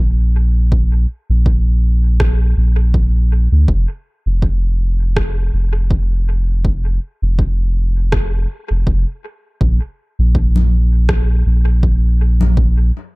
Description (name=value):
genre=ambient dub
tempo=81 BPM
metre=4/4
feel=swing 56% on 16ths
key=unclear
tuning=A4 = 439 Hz
part: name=soft dub sub bass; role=bass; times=0.0-12.9 s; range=F1 to D2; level=-13 LUFS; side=equal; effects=none
part: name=electronic kick drum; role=drums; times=0.7-12.7 s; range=none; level=-18 LUFS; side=equal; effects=none
part: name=electronic rim click and congas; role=drums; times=2.2-12.5 s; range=none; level=-24 LUFS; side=left 1 dB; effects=overdrive, dub echo
room=little or no reverb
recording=echo-heavy mix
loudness=-13 LUFS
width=side -26 dB against mid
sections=0.0-13.2 A section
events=none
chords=none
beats=| 0.72 1.46 2.20 2.94 | 3.68 4.42 5.17 5.91 | 6.65 7.39 8.13 8.87 | 9.61 10.35 11.09 11.83 | 12.57